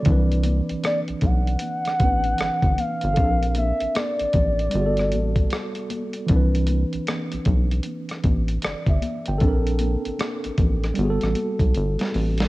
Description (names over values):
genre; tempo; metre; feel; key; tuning
R&B, neo-soul; 77 BPM; 4/4; swing 63% on 16ths; C lydian; A4 = 440 Hz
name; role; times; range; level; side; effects
tine electric piano; accompaniment; 0.0-12.5 s; D3 to G5; -27 LUFS; right 1 dB; overdrive, fast stereo tremolo, cassette tape
rubbery square bass; bass; 0.1-12.5 s; G1 to C2; -22 LUFS; equal; none
dusty soul sampler-style drum kit; drums; 0.1-12.5 s; hi-hat, kick drum, rim click, snare drum; -24 LUFS; equal; cassette tape
congas; percussion; 0.1-12.4 s; none; -34 LUFS; left 4 dB; none
gliding portamento lead; melody; 0.9-5.9 s; D5 to F#5; -24 LUFS; equal; chorus, cassette tape
room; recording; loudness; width
little or no reverb; home recording on cassette; -20 LUFS; side -19 dB against mid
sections
0.0-12.5 A section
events
drum fill 11.7-12.5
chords
0.1 Cmaj9; 3.2 Bbmaj9; 4.7 Gmaj9; 6.3 Cmaj9; 9.4 Bbmaj9; 11.0 Gmaj9